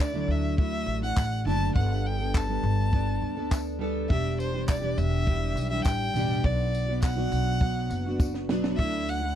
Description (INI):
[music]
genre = acoustic pop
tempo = 102 BPM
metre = 4/4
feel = straight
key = D major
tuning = A4 = 440 Hz
[part]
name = rich violin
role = melody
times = 0.0-9.4 s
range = C5 to A5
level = -32 LUFS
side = left 1 dB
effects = none
[part]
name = fingerpicked plugged-in steel-string acoustic guitar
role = accompaniment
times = 0.0-9.4 s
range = E2 to A4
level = -30 LUFS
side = right 1 dB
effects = double-tracked left and right
[part]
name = upright bass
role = bass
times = 0.0-9.4 s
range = E1 to D2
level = -29 LUFS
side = equal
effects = none
[part]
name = compact cocktail drum kit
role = drums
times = 0.0-9.2 s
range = handclaps, kick drum, snare drum, tambourine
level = -26 LUFS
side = equal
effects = none
[part]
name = tambourine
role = percussion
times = 0.0-8.3 s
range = none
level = -47 LUFS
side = left 5 dB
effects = none
[sound]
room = little or no reverb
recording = dry, close 1970s-style studio recording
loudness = -24 LUFS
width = side -10 dB against mid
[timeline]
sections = 0.0-9.4 A section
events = drum fill 8.2-8.8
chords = 0.0 Dadd9; 1.8 Gadd9; 4.1 Em7; 6.4 Bm; 8.8 Dadd9